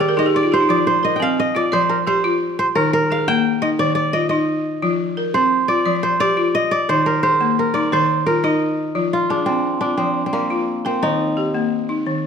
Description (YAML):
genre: west african traditional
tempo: 116 BPM (dotted quarters)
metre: 12/8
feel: straight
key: F dorian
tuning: A4 = 439 Hz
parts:
  - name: kora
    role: melody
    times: 0.0-12.3 s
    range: Bb3 to G5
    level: -18 LUFS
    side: right 1 dB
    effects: none
  - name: balafon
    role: arpeggios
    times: 0.0-12.3 s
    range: Eb3 to D5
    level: -19 LUFS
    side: left 2 dB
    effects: none
room: moderate recital hall reverb, RT60 1.4 s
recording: none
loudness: -16 LUFS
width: side -6 dB against mid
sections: 0.0-9.0 A section; 9.0-12.3 B section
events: balafon fill 0.0-0.7; kora solo 0.0-9.0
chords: 0.0 Eb5; 0.7 F5; 2.8 Eb5; 4.8 F5; 6.9 Eb5; 9.0 Fm; 11.0 Eb